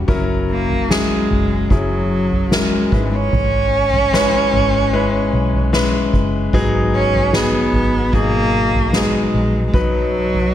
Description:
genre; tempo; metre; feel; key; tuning
pop ballad; 75 BPM; 4/4; straight; unclear; A4 = 439 Hz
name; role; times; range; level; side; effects
warm concert grand piano; accompaniment; 0.0-10.5 s; G#2 to C#5; -19 LUFS; left 3 dB; none
vintage muted fingered electric bass; bass; 0.0-10.5 s; F#1 to B1; -21 LUFS; equal; none
soft-mallet drum kit; drums; 0.1-10.5 s; kick drum, snare drum, toms; -20 LUFS; right 1 dB; none
warm cello; melody; 0.5-10.5 s; F#3 to C#4; -18 LUFS; right 2 dB; none
room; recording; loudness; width
light reverb, small room ambience; none; -14 LUFS; side -11 dB against mid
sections
0.0-10.5 A section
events
none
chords
0.1 F#7; 2.9 E6/G#; 6.5 G#m7; 9.7 B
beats
| 0.08 0.90 1.71 2.52 | 3.33 4.13 4.93 5.73 | 6.53 7.33 8.13 8.93 | 9.74

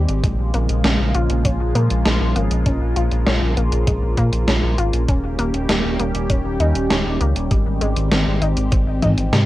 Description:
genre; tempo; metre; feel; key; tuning
synthwave; 99 BPM; 4/4; straight; Bb dorian; A4 = 439 Hz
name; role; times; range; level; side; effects
phased analog pad; sustained chords; 0.0-9.5 s; Db3 to G4; -24 LUFS; equal; phaser, chorus, sidechain pumping, cassette tape
analog pluck; arpeggios; 0.0-9.5 s; G3 to F4; -27 LUFS; left 1 dB; chorus, cassette tape, analog delay
round analog bass; bass; 0.0-9.5 s; Eb1 to Bb2; -19 LUFS; equal; none
gated 80s digital drum machine; drums; 0.1-9.4 s; hi-hat, snare drum, toms; -21 LUFS; equal; gated reverb, gated reverb snare
electronic kick drum; drums; 0.2-9.1 s; none; -20 LUFS; equal; none
room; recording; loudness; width
moderate booth ambience, RT60 0.2 s; home recording on cassette; -16 LUFS; side -16 dB against mid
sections
0.0-9.5 A section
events
drum fill 9.0-9.5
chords
0.2 Bbm7; 5.1 Eb7; 7.5 Abmaj7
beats
| 0.24 0.84 1.45 2.06 | 2.66 3.27 3.87 4.48 | 5.08 5.69 6.30 6.90 | 7.51 8.12 8.72 9.33

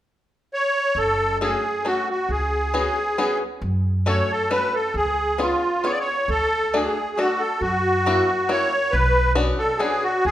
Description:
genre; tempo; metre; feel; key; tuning
musette waltz; 135 BPM; 3/4; swing 54% on 8ths; F# harmonic minor; A4 = 443 Hz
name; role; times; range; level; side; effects
musette accordion; melody; 0.5-10.3 s; E#4 to D5; -20 LUFS; equal; none
upright bass; bass; 0.9-10.3 s; F#1 to F#2; -25 LUFS; equal; none
bluegrass banjo; accompaniment; 1.4-10.0 s; A3 to A4; -26 LUFS; left 2 dB; none
room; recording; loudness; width
moderate recital hall reverb, RT60 1.4 s; minimal, uncompressed stereo recording; -19 LUFS; side -12 dB against mid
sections
1.0-10.3 A section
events
none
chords
0.0 N.C.; 1.0 F#m; 2.3 C#7sus4; 3.6 F#m; 4.9 C#7; 6.3 D; 7.6 F#7; 8.9 Bmadd9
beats
0.06 0.51 | 0.95 1.40 1.85 | 2.30 2.75 3.19 | 3.63 4.07 4.50 | 4.95 5.39 5.83 | 6.28 6.73 7.17 | 7.61 8.05 8.49 | 8.93 9.37 9.81 | 10.25

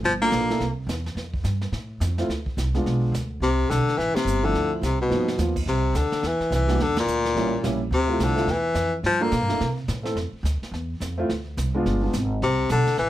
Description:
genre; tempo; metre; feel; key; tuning
jazz, small-group swing and bop; 213 BPM; 4/4; swing 61% on 8ths; C major; A4 = 440 Hz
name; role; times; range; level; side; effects
upright bass; bass; 0.0-13.1 s; G1 to C3; -26 LUFS; right 1 dB; none
vintage brush drum kit; drums; 0.0-13.1 s; brushed snare drum, crash cymbal, hi-hat, kick drum, ride cymbal, snare drum; -33 LUFS; right 1 dB; none
clear baritone saxophone; melody; 0.1-0.7, 3.4-9.8, 12.4-13.1 s; Bb2 to Bb3; -23 LUFS; left 2 dB; none
warm concert grand piano; accompaniment; 0.2-12.1 s; F3 to A4; -26 LUFS; right 2 dB; none
room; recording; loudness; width
light reverb; none; -21 LUFS; side -13 dB against mid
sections
0.0-5.7 A section; 5.7-13.1 A section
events
band accent 4.1, 6.9; drum fill 5.1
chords
0.0 Gm9; 0.6 C; 1.2 Fadd9; 2.3 Dm7; 2.9 Bdim7; 3.4 C5; 4.5 Dm7; 5.1 G7alt; 5.7 C; 6.8 Bb; 7.4 A7b9; 7.9 Dm9; 9.0 Gm9; 9.6 C6; 10.2 Fmaj7(no3); 11.3 Dm7; 11.8 G7b9; 12.4 Bm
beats
| 0.04 0.32 0.60 0.88 | 1.16 1.45 1.73 2.01 | 2.29 2.57 2.85 3.13 | 3.42 3.70 3.98 4.26 | 4.54 4.82 5.10 5.38 | 5.67 5.95 6.23 6.51 | 6.79 7.07 7.35 7.63 | 7.92 8.20 8.48 8.76 | 9.04 9.32 9.60 9.88 | 10.16 10.45 10.73 11.01 | 11.29 11.57 11.85 12.13 | 12.41 12.69 12.97

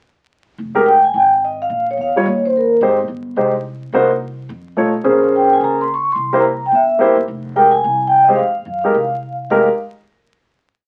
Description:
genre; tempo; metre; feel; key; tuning
jazz, small-group swing and bop; 215 BPM; 4/4; swing 61% on 8ths; F minor; A4 = 439 Hz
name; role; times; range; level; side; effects
upright bass; bass; 0.6-9.7 s; F1 to Gb2; -31 LUFS; equal; none
clear grand piano; accompaniment; 0.7-9.7 s; G3 to Db5; -17 LUFS; equal; none
vibraphone with soft mallets; melody; 0.9-2.8, 5.4-9.7 s; Bb4 to Db6; -16 LUFS; equal; none
room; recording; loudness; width
wet studio ambience, RT60 0.5 s; very old 78 rpm record, vinyl crackle; -15 LUFS; mono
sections
0.6-9.5 A section; 9.5-10.6 final chord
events
none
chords
0.6 Fmadd9; 1.7 Bbm; 2.3 Bbmadd11/Eb; 2.8 Abmaj7; 3.9 Cm7b5; 4.5 F7b13; 5.0 Bbm9; 6.2 C7; 7.3 Fm9; 9.5 Fm11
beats
| 0.58 0.86 1.14 1.42 | 1.70 1.97 2.25 2.53 | 2.81 3.09 3.37 3.64 | 3.92 4.20 4.48 4.76 | 5.04 5.32 5.60 5.88 | 6.15 6.43 6.71 6.99 | 7.27 7.55 7.83 8.11 | 8.39 8.66 8.94 9.22 | 9.50

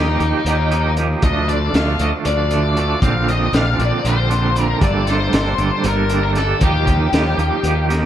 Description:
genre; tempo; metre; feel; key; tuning
psychedelic rock; 234 BPM (eighths); 7/8; straight; unclear; A4 = 439 Hz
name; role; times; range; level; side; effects
octave-fuzz lead guitar; melody; 0.0-7.9 s; Eb4 to F5; -21 LUFS; left 4 dB; distortion, plate reverb, digital delay
tonewheel organ; sustained chords; 0.0-8.1 s; A4 to Bb5; -32 LUFS; right 1 dB; none
twangy electric guitar; riff; 0.0-8.1 s; G2 to A4; -21 LUFS; right 6 dB; tremolo
fuzz fingered electric bass; bass; 0.0-8.1 s; G1 to Eb2; -19 LUFS; equal; overdrive
crunchy breakbeat drum kit; drums; 0.2-8.0 s; hi-hat, kick drum, snare drum; -21 LUFS; equal; none
room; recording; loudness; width
light reverb; none; -15 LUFS; side -10 dB against mid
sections
0.0-8.1 A section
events
none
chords
0.0 Ebadd9; 1.2 Dm; 3.0 Bbadd9; 4.8 Gmadd9; 6.6 Ebadd9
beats
0.20 0.45 0.71 0.97 | 1.22 1.48 1.74 1.99 2.25 2.51 2.76 | 3.02 3.27 3.53 3.79 4.04 4.30 4.56 | 4.82 5.07 5.33 5.58 5.84 6.10 6.35 | 6.61 6.87 7.12 7.38 7.64 7.89

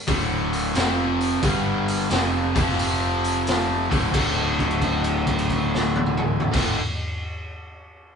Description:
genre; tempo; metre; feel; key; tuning
blues rock power trio and southern rock; 89 BPM; 4/4; swing 67% on 8ths; unclear; A4 = 442 Hz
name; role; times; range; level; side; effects
overdriven electric guitar; riff; 0.1-6.8 s; D2 to G3; -22 LUFS; equal; none
fuzz picked electric bass; bass; 0.1-6.8 s; D1 to G1; -29 LUFS; equal; overdrive
raw garage drum kit; drums; 0.1-6.7 s; crash cymbal, hi-hat, kick drum, snare drum, toms; -25 LUFS; equal; none
room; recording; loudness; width
wet studio reverb, RT60 0.7 s; band playing live in one room, nothing above 10.6 kHz; -20 LUFS; side -6 dB against mid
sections
0.0-4.1 A section; 4.1-6.8 B section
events
held note 4.1-6.4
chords
0.0 D5; 0.7 F5; 1.4 G5; 2.1 F5; 3.8 D5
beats
0.07 0.75 | 1.43 2.10 2.78 3.45 | 4.13 4.81 5.49 6.16

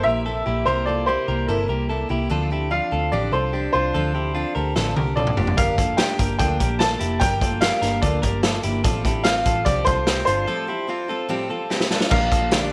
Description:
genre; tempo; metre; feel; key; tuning
jangly indie pop; 147 BPM; 4/4; straight; D minor; A4 = 440 Hz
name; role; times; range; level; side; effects
warm upright piano; melody; 0.0-12.7 s; Bb4 to A5; -26 LUFS; equal; slapback echo
picked steel-string acoustic guitar; accompaniment; 0.0-12.7 s; G2 to Bb4; -31 LUFS; equal; none
direct-recorded clean electric guitar; arpeggios; 0.0-12.7 s; C4 to Bb4; -30 LUFS; equal; slapback echo
vintage muted picked electric bass; bass; 0.0-12.7 s; F1 to D2; -28 LUFS; equal; none
raw garage drum kit; drums; 4.8-12.6 s; crash cymbal, hi-hat, kick drum, snare drum, toms; -24 LUFS; equal; none
room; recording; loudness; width
moderate plate reverb, RT60 1.7 s, studio reverb; none; -21 LUFS; mono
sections
0.0-12.1 A section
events
drum fill 4.8-5.6, 11.7-12.1; break 10.5-12.1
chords
0.0 C7; 2.3 Dm7; 5.4 Gm7; 8.8 Fadd9; 12.1 Bb6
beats
0.26 | 0.67 1.08 1.49 1.90 | 2.31 2.71 3.12 3.53 | 3.94 4.35 4.76 5.17 | 5.58 5.99 6.39 6.80 | 7.21 7.62 8.03 8.44 | 8.85 9.26 9.66 10.07 | 10.48 10.89 11.30 11.71 | 12.12 12.52

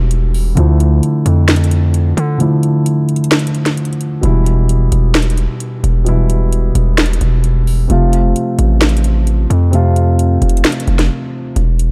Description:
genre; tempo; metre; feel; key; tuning
hip hop, trap; 131 BPM; 4/4; half-time; unclear; A4 = 440 Hz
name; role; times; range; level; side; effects
dark grand piano; accompaniment; 0.0-11.6 s; B2 to F4; -18 LUFS; equal; low-pass filter
distorted 808-style bass; bass; 0.0-11.9 s; E1 to D3; -15 LUFS; equal; distortion
trap drum kit; drums; 0.1-11.9 s; hi-hat, snare drum; -20 LUFS; equal; none
room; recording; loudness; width
light reverb, digital ambience; dark, warm production; -13 LUFS; mono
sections
0.0-11.9 A section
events
break 2.4-4.2, 11.1-11.6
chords
0.0 Em; 0.6 Dmadd9; 4.2 Em; 7.9 F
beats
0.11 | 0.57 1.03 1.49 1.94 | 2.40 2.86 3.32 3.78 | 4.23 4.69 5.15 5.61 | 6.07 6.52 6.98 7.44 | 7.90 8.36 8.81 9.27 | 9.73 10.19 10.65 11.10 | 11.56

